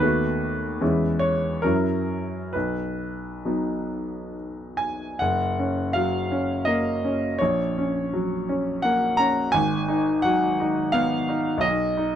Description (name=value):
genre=classical, romantic nocturne for solo piano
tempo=64-88 BPM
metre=3/4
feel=rubato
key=B major, F# major from 5.2 s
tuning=A4 = 438 Hz
part: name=clear grand piano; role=solo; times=0.0-12.2 s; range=F#1 to A#5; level=-22 LUFS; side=equal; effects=none
room=light reverb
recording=dark, warm production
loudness=-22 LUFS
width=side -10 dB against mid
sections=0.0-5.2 A section; 5.2-12.2 B section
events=none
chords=0.0 B7/D#; 0.8 E6; 1.6 F#7; 2.5 B; 5.2 F#; 7.4 F#/A#; 9.5 G#m7; 11.6 G#m/B (rootless)